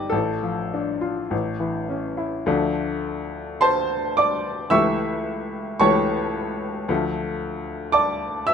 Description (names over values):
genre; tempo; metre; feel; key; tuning
classical, romantic nocturne for solo piano; 49-58 BPM; 4/4; rubato; D minor; A4 = 440 Hz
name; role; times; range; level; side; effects
clear upright piano; solo; 0.0-8.5 s; G1 to E6; -21 LUFS; left 1 dB; none
room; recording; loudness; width
light reverb; close, detailed microphones; -21 LUFS; side -7 dB against mid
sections
0.0-2.5 A section; 2.5-8.5 B section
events
none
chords
0.1 Dm/A; 1.3 A; 2.5 Dm; 4.7 A7/C#; 6.9 Dm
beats
0.12 1.32 | 2.46 3.63 4.73 5.82 | 6.90 7.95